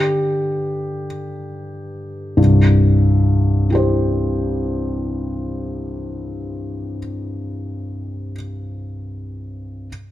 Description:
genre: neoclassical minimalist piano.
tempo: 45 BPM (dotted quarters).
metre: 6/8.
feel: rubato.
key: C major.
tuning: A4 = 443 Hz.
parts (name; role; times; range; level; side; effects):
felt-muted upright piano; solo; 0.0-9.9 s; C2 to C5; -18 LUFS; equal; none.
room: light reverb.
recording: close, detailed microphones.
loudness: -17 LUFS.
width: side -14 dB against mid.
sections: 0.0-2.4 A section; 2.4-7.7 B section.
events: slowing down 0.0-2.4.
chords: 0.0 G5; 2.4 C.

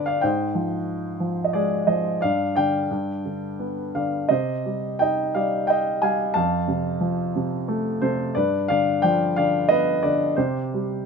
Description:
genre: classical, lyrical solo piano.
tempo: 89 BPM.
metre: 3/4.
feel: uneven beats, rubato.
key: C harmonic minor.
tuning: A4 = 440 Hz.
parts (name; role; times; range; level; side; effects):
warm grand piano; solo; 0.0-11.1 s; F2 to A5; -21 LUFS; equal; none.
room: light reverb.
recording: close, detailed microphones.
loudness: -21 LUFS.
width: side -5 dB against mid.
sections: 0.0-11.1 A section.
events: none.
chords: 0.2 Fmadd9/Ab; 2.2 G5; 2.9 G; 4.3 Cm; 6.4 F; 8.4 G7; 10.4 C5.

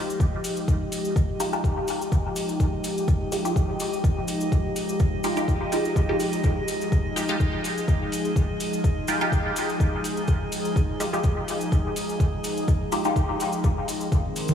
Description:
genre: dub techno.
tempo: 125 BPM.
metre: 4/4.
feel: swing 54% on 16ths.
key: F minor.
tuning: A4 = 440 Hz.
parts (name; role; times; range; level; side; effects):
airy breathy pad; sustained chords; 0.0-14.5 s; Eb3 to Bb4; -28 LUFS; left 1 dB; chorus, sidechain pumping.
drifting glass-harmonics texture; texture; 0.0-14.5 s; C5 to Eb5; -37 LUFS; right 4 dB; chorus, built-in reverb, sidechain pumping.
cabasa; percussion; 0.1-14.5 s; none; -38 LUFS; left 3 dB; none.
electronic kick drum; drums; 0.2-14.2 s; none; -22 LUFS; equal; overdrive.
electronic hi-hat; drums; 0.4-14.5 s; none; -38 LUFS; right 1 dB; overdrive.
filtered dub chord stab; stabs; 1.4-13.2 s; Ab3 to G4; -29 LUFS; equal; phaser, sidechain pumping, dub echo.
congas; percussion; 14.5 s; none; -20 LUFS; right 2 dB; overdrive, sidechain pumping on perc.
room: moderate huge ambient reverb, RT60 3.9 s.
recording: dreamy mix soaked in reverb, small room reverb.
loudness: -22 LUFS.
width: side -8 dB against mid.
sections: 0.0-14.5 A section.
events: none.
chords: 0.0 Fm9.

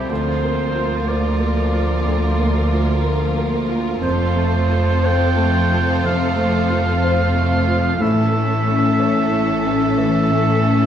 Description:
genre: cinematic, emotional film score for orchestra.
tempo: 61 BPM.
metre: 4/4.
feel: rubato.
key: F major.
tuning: A4 = 440 Hz.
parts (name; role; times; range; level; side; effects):
rich studio violin section; second line; 0.0-10.9 s; C#4 to Bb4; -25 LUFS; equal; none.
warm cor anglais; second line; 0.0-10.9 s; C5 to G5; -23 LUFS; right 2 dB; none.
felt-muted upright piano; accompaniment; 0.0-10.9 s; C2 to C#5; -22 LUFS; left 1 dB; none.
warm studio viola section; accompaniment; 0.0-10.9 s; E3 to C4; -24 LUFS; left 1 dB; none.
rich studio cello section; bass; 0.0-10.9 s; D2 to A2; -24 LUFS; equal; none.
rich studio double bass section; bass; 0.0-10.9 s; F1 to D2; -21 LUFS; right 1 dB; none.
room: wet stone room reverb, RT60 1.3 s.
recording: heard from further back in the room.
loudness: -15 LUFS.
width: side -9 dB against mid.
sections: 0.0-10.9 A section.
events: none.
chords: 0.1 Bb/D; 4.0 F; 8.0 A.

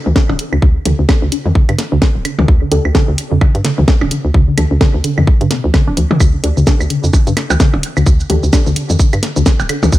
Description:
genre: minimal techno.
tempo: 129 BPM.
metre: 4/4.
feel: swing 58% on 16ths.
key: D minor.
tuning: A4 = 439 Hz.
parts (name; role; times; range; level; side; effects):
hollow knocking FM bass; bass; 0.1-10.0 s; D1 to G2; -16 LUFS; equal; sidechain pumping.
electronic toms, percussion blips and claves; percussion; 0.1-9.9 s; none; -20 LUFS; left 1 dB; small room ambience, analog delay.
resonant blip pluck; riff; 0.2-9.9 s; C3 to D4; -18 LUFS; equal; phaser, cassette tape, sidechain pumping, diffuse ambient delay.
electronic kick drum; drums; 0.2-10.0 s; none; -11 LUFS; equal; small room ambience.
garage drum kit; drums; 0.2-10.0 s; hi-hat, shaker, snare drum; -19 LUFS; equal; small room ambience.
filtered dub chord stab; stabs; 0.9-8.6 s; D4 to A4; -23 LUFS; right 1 dB; chorus, analog delay.
room: little or no reverb.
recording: none.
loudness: -10 LUFS.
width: side -16 dB against mid.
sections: 0.0-10.0 A section.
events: filter sweep on synth pluck 0.0-10.0; filter sweep on synth stab 0.0-10.0.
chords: 0.0 Dsus4.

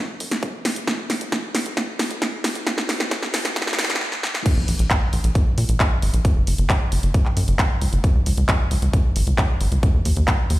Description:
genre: uplifting trance.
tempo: 134 BPM.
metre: 4/4.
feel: straight.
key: unclear.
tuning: A4 = 438 Hz.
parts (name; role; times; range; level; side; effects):
tight sequencer bass; bass; 0.2-10.6 s; Gb1 to Bb2; -20 LUFS; equal; sidechain pumping, high-pass filter.
big-room dance drum kit; drums; 0.2-10.6 s; crash cymbal, handclaps, hi-hat, snare drum; -24 LUFS; equal; sidechain pumping on hats, sidechain pumping on cymbals.
electronic kick drum; drums; 0.4-10.4 s; none; -20 LUFS; equal; high-pass filter on kick.
room: light reverb.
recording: played on a big sound system in a bare room, large studio reverb, high-pass filter.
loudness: -18 LUFS.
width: side -17 dB against mid.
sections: 0.0-4.5 A section; 4.5-10.6 B section.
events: build-up 0.0-4.5; drum fill 0.0-4.0, 4.0-4.5; filter sweep 0.0-4.5; stop 4.0-4.5; drop 4.5-10.6.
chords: none.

